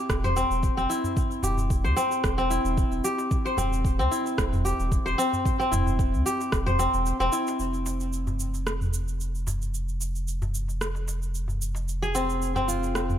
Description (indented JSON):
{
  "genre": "organic downtempo",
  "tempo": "112 BPM",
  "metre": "4/4",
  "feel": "swing 54% on 16ths",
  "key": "unclear",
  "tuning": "A4 = 439 Hz",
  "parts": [
    { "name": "kora", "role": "arpeggios", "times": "0.0-13.2 s", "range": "C4 to C5", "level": "-26 LUFS", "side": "left 1 dB", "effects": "tape echo" },
    { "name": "warm sub bass", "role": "bass", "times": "0.1-13.2 s", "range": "E1 to E2", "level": "-28 LUFS", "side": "equal", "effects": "sidechain pumping" },
    { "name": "electronic kick drum", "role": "drums", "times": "0.1-6.6 s", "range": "none", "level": "-27 LUFS", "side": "equal", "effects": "none" },
    { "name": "organic electronic drum kit", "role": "drums", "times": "0.1-13.2 s", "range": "rim click, shaker, toms", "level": "-31 LUFS", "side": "right 1 dB", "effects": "none" },
    { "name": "darbuka", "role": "percussion", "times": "0.9-12.9 s", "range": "none", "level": "-35 LUFS", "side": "left 1 dB", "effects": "none" }
  ],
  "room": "light reverb, digital ambience",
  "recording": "none",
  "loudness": "-24 LUFS",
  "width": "side -10 dB against mid",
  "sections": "0.0-7.6 A section; 7.6-13.2 B section",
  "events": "kick drops out 7.1-7.6",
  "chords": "0.0 C/E; 7.6 Fm",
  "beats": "0.10 0.63 | 1.17 1.70 2.24 2.77 | 3.31 3.85 4.38 4.92 | 5.45 5.99 6.52 7.06 | 7.59 8.13 8.67 9.20 | 9.74 10.27 10.81 11.35 | 11.88 12.42 12.95"
}